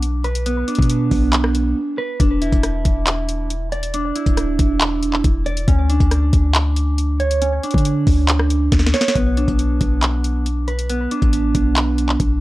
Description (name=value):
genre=hip hop, trap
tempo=138 BPM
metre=4/4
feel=half-time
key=B minor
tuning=A4 = 437 Hz
part: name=mellow electric guitar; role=arpeggios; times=0.0-12.4 s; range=B3 to D5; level=-21 LUFS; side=right 2 dB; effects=phaser, tape echo
part: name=clean 808-style bass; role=bass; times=0.0-12.4 s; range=D1 to D3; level=-19 LUFS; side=equal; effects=none
part: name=trap drum kit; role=drums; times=0.0-12.3 s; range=handclaps, hi-hat, kick drum, rim click, snare drum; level=-18 LUFS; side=equal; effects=none
room=little or no reverb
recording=dry, gritty hardware recording, cassette tape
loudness=-15 LUFS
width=side -17 dB against mid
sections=0.0-9.2 A section; 9.2-12.4 B section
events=break 1.8-2.2; drum fill 8.7-9.2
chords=0.0 Bm; 2.2 Dsus2; 5.7 N.C.; 9.2 Bm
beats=0.03 | 0.46 0.90 1.33 1.76 | 2.20 2.63 3.07 3.50 | 3.94 4.37 4.81 5.24 | 5.68 6.11 6.55 6.98 | 7.42 7.85 8.29 8.72 | 9.16 9.59 10.03 10.46 | 10.89 11.33 11.76 12.20